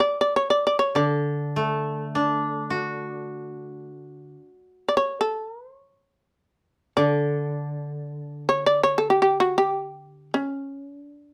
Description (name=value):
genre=japanese traditional, Japanese chamber music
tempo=free time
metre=none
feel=none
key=D ryukyu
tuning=A4 = 438 Hz
part: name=shamisen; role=melody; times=0.0-11.3 s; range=D4 to D5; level=-23 LUFS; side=equal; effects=none
part: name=koto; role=accompaniment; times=1.0-10.3 s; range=D3 to F#4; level=-28 LUFS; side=equal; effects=none
room=light reverb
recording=close, detailed microphones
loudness=-24 LUFS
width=mono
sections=0.0-11.3 A section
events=none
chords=none